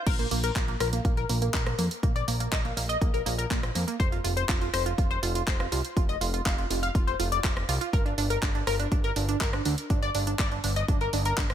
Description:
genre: progressive house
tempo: 122 BPM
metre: 4/4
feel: straight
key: unclear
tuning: A4 = 440 Hz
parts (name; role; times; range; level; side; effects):
- tight sequenced synth; arpeggios; 0.0-11.5 s; Bb3 to F5; -30 LUFS; equal; chorus, phaser, sidechain pumping, ping-pong delay
- fat analog bass; bass; 0.1-11.5 s; F1 to F2; -30 LUFS; equal; sidechain pumping
- electronic kick drum; drums; 0.1-11.5 s; none; -27 LUFS; equal; none
- house drum kit; drums; 0.1-11.5 s; crash cymbal, handclaps, hi-hat, rim click; -33 LUFS; right 1 dB; none
room: light reverb, digital ambience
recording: high-pass filter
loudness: -24 LUFS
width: side -10 dB against mid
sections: 0.1-11.5 A section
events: drop 0.1-11.5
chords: 0.1 Bb5; 4.0 F5; 7.9 G5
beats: | 0.07 0.56 1.05 1.54 | 2.03 2.52 3.02 3.51 | 4.00 4.49 4.98 5.47 | 5.97 6.46 6.95 7.44 | 7.93 8.43 8.92 9.41 | 9.90 10.39 10.88 11.38

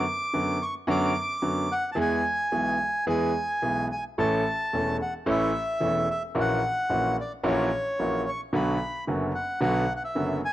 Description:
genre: tango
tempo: 110 BPM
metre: 4/4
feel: rubato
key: unclear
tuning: A4 = 440 Hz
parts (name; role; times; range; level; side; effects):
- bandoneon; melody; 0.0-10.5 s; C#5 to D6; -28 LUFS; equal; none
- bright concert grand piano; accompaniment; 0.0-10.4 s; E1 to A4; -26 LUFS; equal; none
room: light reverb, studio reverb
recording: dry, close 1970s-style studio recording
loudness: -24 LUFS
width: side -14 dB against mid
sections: 0.0-10.5 A section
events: none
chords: 0.0 Bm/F#; 2.0 E; 4.2 A; 6.4 F#7/A#; 8.5 Bm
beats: 0.33 0.88 1.43 | 1.97 2.52 3.08 3.63 | 4.18 4.73 5.28 5.82 | 6.37 6.92 7.46 8.00 | 8.54 9.08 9.62 10.16

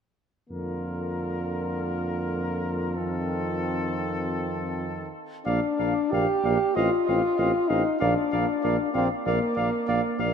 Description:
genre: classical, brass quintet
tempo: 96 BPM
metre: 4/4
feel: rubato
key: Bb major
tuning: A4 = 442 Hz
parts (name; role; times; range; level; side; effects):
- clear trumpet; melody; 0.5-10.3 s; A4 to F5; -33 LUFS; left 4 dB; none
- warm flugelhorn; second line; 0.5-10.3 s; F4 to Eb5; -33 LUFS; right 5 dB; none
- clear trombone; accompaniment; 0.5-10.3 s; D3 to C4; -34 LUFS; right 5 dB; none
- warm French horn; accompaniment; 0.5-10.2 s; Bb3 to G4; -27 LUFS; left 2 dB; none
- warm tuba; bass; 0.5-10.3 s; A1 to F2; -29 LUFS; equal; none
room: wet cathedral reverb, RT60 5.4 s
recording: in a vast, echoing space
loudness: -24 LUFS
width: side -7 dB against mid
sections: 0.5-5.5 A section; 5.5-10.3 B section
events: none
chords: 0.5 Bb/F; 3.0 F7; 5.5 Bb; 6.8 F7/A; 8.0 Bb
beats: | 0.50 1.13 1.75 2.36 | 2.97 3.58 4.19 4.82 | 5.46 6.12 6.76 7.38 | 8.00 8.63 9.25 9.87

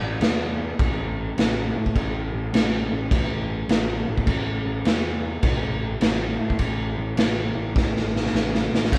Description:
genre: blues rock power trio and southern rock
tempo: 103 BPM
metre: 4/4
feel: swing 67% on 8ths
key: unclear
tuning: A4 = 438 Hz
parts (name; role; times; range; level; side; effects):
- fuzz picked electric bass; bass; 0.0-9.0 s; A1 to A2; -29 LUFS; equal; overdrive
- raw garage drum kit; drums; 0.2-9.0 s; crash cymbal, kick drum, snare drum; -25 LUFS; equal; none
room: light reverb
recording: band playing live in one room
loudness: -24 LUFS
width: mono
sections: 0.0-8.9 A section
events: drum fill 7.8-8.9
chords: none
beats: 0.21 0.79 1.37 | 1.95 2.53 3.11 3.69 | 4.27 4.85 5.43 6.01 | 6.59 7.17 7.76 8.34 | 8.92

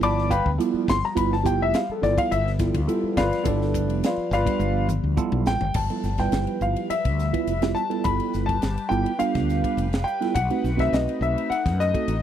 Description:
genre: electric jazz fusion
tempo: 104 BPM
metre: 4/4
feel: straight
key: G mixolydian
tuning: A4 = 440 Hz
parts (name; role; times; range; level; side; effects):
- dark baby grand piano; melody; 0.0-12.2 s; D4 to D6; -26 LUFS; left 3 dB; none
- tine electric piano; accompaniment; 0.0-12.1 s; G3 to B4; -26 LUFS; right 6 dB; phaser
- phased analog pad; sustained chords; 0.0-12.2 s; F3 to B4; -34 LUFS; left 2 dB; phaser, chorus
- mellow fretless electric bass; bass; 0.0-12.2 s; F1 to F#2; -26 LUFS; left 1 dB; none
- tight funk drum kit; drums; 0.0-12.2 s; crash cymbal, hi-hat, kick drum, ride cymbal, snare drum, toms; -28 LUFS; equal; none
room: little or no reverb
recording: dry, close 1970s-style studio recording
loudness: -21 LUFS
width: side -10 dB against mid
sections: 0.0-5.8 A section; 5.8-12.2 B section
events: grand piano solo 0.0-5.8; drum fill 4.6-5.8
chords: 0.0 G13; 10.4 B7b9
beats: 0.01 0.59 | 1.16 1.73 2.31 2.88 | 3.46 4.03 4.60 5.18 | 5.75 6.33 6.90 7.48 | 8.05 8.63 9.21 9.78 | 10.36 10.94 11.51 12.09

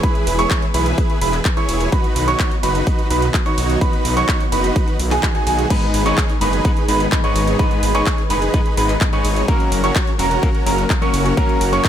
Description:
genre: EDM, festival progressive house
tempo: 127 BPM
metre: 4/4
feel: straight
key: unclear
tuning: A4 = 440 Hz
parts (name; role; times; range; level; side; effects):
- muted chamber string section; sustained chords; 0.0-11.9 s; C#3 to B4; -26 LUFS; right 1 dB; sidechain pumping
- dark baby grand piano; arpeggios; 0.0-11.9 s; G#5 to C#6; -23 LUFS; right 4 dB; sidechain pumping, ping-pong delay
- dense compressed supersaw; riff; 0.0-11.9 s; C#4 to C#5; -22 LUFS; right 1 dB; cassette tape, sidechain pumping, ping-pong delay
- big-room dance drum kit; drums; 0.0-11.9 s; crash cymbal, handclaps, hi-hat, ride cymbal; -26 LUFS; equal; overdrive
- electronic kick drum; drums; 0.0-11.9 s; none; -18 LUFS; equal; overdrive
- wide detuned saw bass; bass; 0.3-11.8 s; E1 to B1; -21 LUFS; equal; chorus, sidechain pumping
- semi-hollow electric guitar; accompaniment; 5.7-11.8 s; G#2 to B4; -24 LUFS; left 7 dB; sidechain pumping, ping-pong delay
room: little or no reverb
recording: none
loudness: -15 LUFS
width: side -10 dB against mid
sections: 0.0-11.9 A section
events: none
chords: 0.0 E; 1.9 B; 9.5 F#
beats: | 0.03 0.51 0.98 1.45 | 1.92 2.40 2.87 3.34 | 3.81 4.29 4.76 5.23 | 5.70 6.18 6.65 7.12 | 7.59 8.06 8.54 9.01 | 9.48 9.96 10.43 10.90 | 11.37 11.85

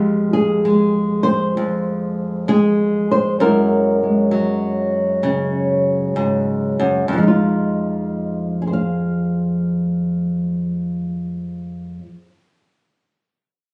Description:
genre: solo jazz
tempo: 65 BPM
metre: 4/4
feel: swing 69% on 8ths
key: F minor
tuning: A4 = 441 Hz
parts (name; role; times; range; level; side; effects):
- flamenco guitar; solo; 0.0-12.3 s; F2 to F5; -19 LUFS; equal; none
room: light reverb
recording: recorded on a phone in the room, club reverb, compression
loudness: -19 LUFS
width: mono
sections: 0.0-7.1 A section; 7.1-10.7 B section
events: none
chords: 0.0 Fmadd9; 3.4 Gb9; 7.1 Fm7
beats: 0.63 1.55 2.46 | 3.38 4.30 5.22 6.13 | 7.05 7.97 8.89 9.81

